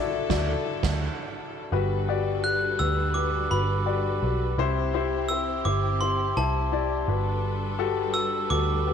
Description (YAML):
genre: piano-driven pop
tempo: 84 BPM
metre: 4/4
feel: straight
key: G major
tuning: A4 = 440 Hz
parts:
  - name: warm concert grand piano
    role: accompaniment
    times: 0.0-8.9 s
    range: G2 to D5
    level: -28 LUFS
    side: left 9 dB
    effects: none
  - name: bright studio string section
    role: sustained chords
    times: 0.0-8.9 s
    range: D3 to B4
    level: -35 LUFS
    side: right 1 dB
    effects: none
  - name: vintage muted picked electric bass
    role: bass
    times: 0.0-8.9 s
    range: G1 to D2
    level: -28 LUFS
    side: right 2 dB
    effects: none
  - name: soft-mallet drum kit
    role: drums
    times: 0.3-1.1 s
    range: crash cymbal, kick drum, snare drum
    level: -31 LUFS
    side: right 5 dB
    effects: none
  - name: glockenspiel with brass mallets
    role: melody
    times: 2.4-8.8 s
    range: A5 to F#6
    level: -28 LUFS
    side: right 1 dB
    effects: none
room: moderate echo chamber reverb, RT60 2.1 s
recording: 1960s-style stereo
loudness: -23 LUFS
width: side -7 dB against mid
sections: 0.0-1.7 A section; 1.7-8.9 B section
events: band accent 0.3-1.7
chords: 0.0 Dadd9; 1.7 Gmaj7; 4.6 C; 7.1 Gmaj7